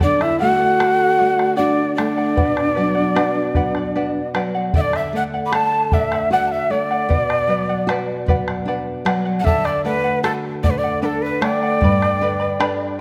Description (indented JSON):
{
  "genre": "andean folk, Andean ensemble",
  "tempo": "76 BPM",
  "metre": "3/4",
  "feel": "straight",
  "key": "unclear",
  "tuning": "A4 = 440 Hz",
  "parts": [
    { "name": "breathy mellow quena", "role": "melody", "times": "0.0-13.0 s", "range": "A4 to B5", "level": "-22 LUFS", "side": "equal", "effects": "none" },
    { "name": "breathy pan flute", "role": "second line", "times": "0.0-13.0 s", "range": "D4 to D6", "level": "-26 LUFS", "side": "equal", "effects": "none" },
    { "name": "charango", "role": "accompaniment", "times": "0.0-13.0 s", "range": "G4 to B5", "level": "-28 LUFS", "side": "equal", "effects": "none" },
    { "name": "nylon-string guitar", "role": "accompaniment", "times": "0.0-13.0 s", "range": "G2 to A4", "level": "-26 LUFS", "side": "equal", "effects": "none" },
    { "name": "bombo", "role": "percussion", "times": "0.0-12.9 s", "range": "none", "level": "-26 LUFS", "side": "equal", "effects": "none" }
  ],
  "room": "moderate scoring stage reverb, RT60 2.0 s",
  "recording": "none",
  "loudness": "-19 LUFS",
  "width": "mono",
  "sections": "0.0-4.7 A section; 4.7-13.0 A section",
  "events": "none",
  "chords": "0.0 D; 2.4 Bm; 4.7 D; 7.1 Bm; 9.5 D; 11.8 G"
}